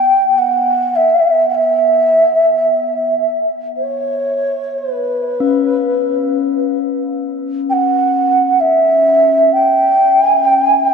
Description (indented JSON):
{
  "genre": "world meditative, free-time meditation music",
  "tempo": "free time",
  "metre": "none",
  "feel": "none",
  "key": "unclear",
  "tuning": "A4 = 438 Hz",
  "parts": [
    { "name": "mellow hollow xiao", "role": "melody", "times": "0.0-10.9 s", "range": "B4 to G5", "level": "-12 LUFS", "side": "right 1 dB", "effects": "tape echo" },
    { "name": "bronze singing bowl", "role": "texture", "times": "0.0-10.9 s", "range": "B3 to C#4", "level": "-21 LUFS", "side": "left 8 dB", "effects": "none" }
  ],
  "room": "wet huge ambient reverb, RT60 6.8 s",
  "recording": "dark, warm production",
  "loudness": "-12 LUFS",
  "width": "side -6 dB against mid",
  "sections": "0.0-10.9 A section",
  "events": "none",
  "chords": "none",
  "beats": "free time"
}